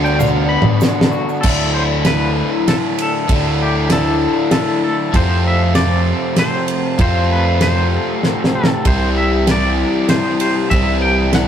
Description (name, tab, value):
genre	folk rock and heartland rock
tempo	97 BPM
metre	3/4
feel	straight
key	unclear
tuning	A4 = 440 Hz
part	twangy electric guitar	melody	0.0-11.5 s	F#4 to B5	-22 LUFS	left 1 dB	tremolo, analog delay
part	picked twelve-string acoustic guitar	accompaniment	0.0-11.5 s	C3 to G4	-22 LUFS	left 4 dB	none
part	dark chamber string section	sustained chords	0.0-1.4 s	D4 to D5	-27 LUFS	equal	none
part	biting overdriven guitar	riff	0.0-11.5 s	F2 to F#4	-19 LUFS	equal	none
part	fingered electric bass	bass	0.0-11.5 s	C2 to F2	-18 LUFS	equal	none
part	egg shaker	percussion	0.1-1.4 s	none	-36 LUFS	right 8 dB	none
part	damped 70s drum kit	drums	0.2-11.5 s	crash cymbal, kick drum, ride cymbal, snare drum, toms	-18 LUFS	equal	none
room	moderate stone room reverb, RT60 1.0 s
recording	rough rehearsal-room recording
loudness	-13 LUFS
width	side -9 dB against mid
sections	0.0-1.4 A section; 1.4-11.5 B section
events	clean electric guitar solo 0.0-1.4; drum fill 0.2-1.4, 8.2-8.9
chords	0.0 Bm/D; 1.4 Dsus2; 5.1 Fadd9; 8.9 Cadd9